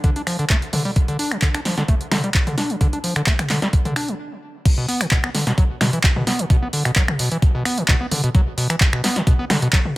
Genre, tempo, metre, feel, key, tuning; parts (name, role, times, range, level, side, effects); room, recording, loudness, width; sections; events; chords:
acid house; 130 BPM; 4/4; swing 53% on 16ths; A4 = 441 Hz
overdriven acid bass; riff; 0.0-9.8 s; B2 to D4; -23 LUFS; equal; distortion, tube saturation, sidechain pumping, digital delay
electronic kick drum; drums; 0.0-9.8 s; -17 LUFS; equal
punchy analog drum machine; drums; 0.0-9.9 s; crash cymbal, finger snaps, handclaps, hi-hat, snare drum, toms; -21 LUFS; equal; overdrive
little or no reverb; -17 LUFS; side -19 dB against mid
0.0-4.7 A section; 4.7-10.0 B section
stop 4.2-4.7; drop 4.7-10.0